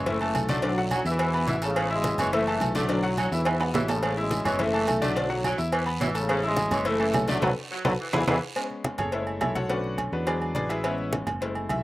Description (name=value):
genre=latin, salsa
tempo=212 BPM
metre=4/4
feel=straight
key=A major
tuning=A4 = 440 Hz
part: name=mellow trombone section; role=melody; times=0.0-8.4 s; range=E2 to A3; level=-28 LUFS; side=equal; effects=none
part: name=warm saxophone section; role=second line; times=0.0-8.4 s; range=C#3 to A3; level=-33 LUFS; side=right 1 dB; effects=slapback echo
part: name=bright grand piano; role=accompaniment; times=0.0-11.8 s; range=D3 to E6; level=-29 LUFS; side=left 2 dB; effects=none
part: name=fingered electric bass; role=bass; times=0.0-11.8 s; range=F#1 to E2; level=-31 LUFS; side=equal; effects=none
part: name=congas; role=percussion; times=0.1-11.8 s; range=none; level=-33 LUFS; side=equal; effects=none
part: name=cowbell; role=percussion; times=0.1-11.8 s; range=none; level=-35 LUFS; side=left 2 dB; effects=none
part: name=guiro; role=percussion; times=0.1-8.3 s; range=none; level=-40 LUFS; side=right 5 dB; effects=none
part: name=agogo bells and timbales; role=percussion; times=0.2-11.8 s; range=none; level=-31 LUFS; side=right 3 dB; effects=none
room=little or no reverb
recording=recorded outdoors, with no room sound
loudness=-23 LUFS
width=side -17 dB against mid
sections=0.0-8.6 A section; 8.6-11.8 B section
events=drum fill 3.5-4.0, 7.4-8.6; band accent 7.4-8.6; grand piano solo 8.6-11.8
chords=0.1 F#m7; 0.6 Bm7; 1.2 E; 1.8 Amaj9; 2.3 F#m7; 2.9 Bm7; 3.5 E; 4.0 Amaj9; 4.6 F#m7; 5.2 Bm7; 5.7 E; 6.3 Amaj9; 6.9 F#m7; 7.4 B7(no3); 8.0 E7; 8.6 Amaj9; 9.1 F#m7; 9.7 Bm7; 10.3 E7; 10.8 Amaj9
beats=0.06 0.35 | 0.63 0.91 1.20 1.48 | 1.76 2.04 2.33 2.61 | 2.89 3.18 3.46 3.74 | 4.03 4.31 4.59 4.88 | 5.16 5.44 5.73 6.01 | 6.29 6.58 6.86 7.14 | 7.43 7.71 8.00 8.28 | 8.56 8.85 9.13 9.42 | 9.70 9.99 10.27 10.55 | 10.84 11.12 11.41 11.69